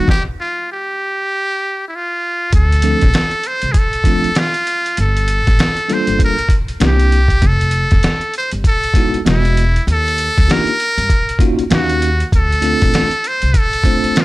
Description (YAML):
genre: hip hop, jazz-hop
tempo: 98 BPM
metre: 4/4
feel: swing 60% on 16ths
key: unclear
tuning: A4 = 439 Hz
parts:
  - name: trumpet with metal mute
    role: melody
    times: 0.0-14.2 s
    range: E4 to C5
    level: -18 LUFS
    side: equal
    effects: none
  - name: bell-like tine electric piano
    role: accompaniment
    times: 0.0-14.2 s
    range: F3 to F5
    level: -19 LUFS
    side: equal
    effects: fast stereo tremolo
  - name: trip hop sampler-style drum kit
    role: drums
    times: 0.1-14.2 s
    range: hi-hat, kick drum, snare drum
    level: -15 LUFS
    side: equal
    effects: none
  - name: upright bass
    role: bass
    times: 2.5-13.5 s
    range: E1 to G2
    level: -16 LUFS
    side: equal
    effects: tube saturation
room: small room ambience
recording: dry, gritty hardware recording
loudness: -12 LUFS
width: side -18 dB against mid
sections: 0.0-2.5 A section; 2.5-14.2 B section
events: stop 0.1-2.5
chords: 0.1 N.C.; 2.5 Dm7; 5.0 Gm7; 6.8 C9; 7.4 F7; 9.3 Emaj7; 9.9 Ebmaj7; 11.7 Ebm7; 12.3 Dm7